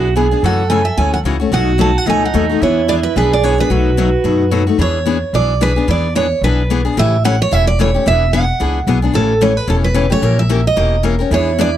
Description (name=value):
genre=acoustic string swing (jazz manouche)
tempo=221 BPM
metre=4/4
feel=swing 57% on 8ths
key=E mixolydian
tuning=A4 = 440 Hz
part: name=mellow soprano saxophone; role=second line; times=0.0-4.7, 11.3-11.8 s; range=D#4 to A4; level=-19 LUFS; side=right 7 dB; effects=none
part: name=picked steel-string acoustic guitar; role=accompaniment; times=0.0-11.7 s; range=B2 to A#4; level=-18 LUFS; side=left 7 dB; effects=none
part: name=upright bass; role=bass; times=0.0-11.7 s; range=E1 to F#2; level=-16 LUFS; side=equal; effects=none
part: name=picked steel-string acoustic guitar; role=melody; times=0.5-11.7 s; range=A4 to A5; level=-17 LUFS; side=right 4 dB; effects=none
room=small room ambience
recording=dry, close 1970s-style studio recording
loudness=-12 LUFS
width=side -11 dB against mid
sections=0.0-4.8 A section; 4.8-11.8 A section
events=none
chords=0.4 F#m7; 1.5 B7; 2.6 E7; 3.7 B7; 4.8 E7; 7.0 A7; 8.1 E7; 9.1 A7; 10.2 A#dim7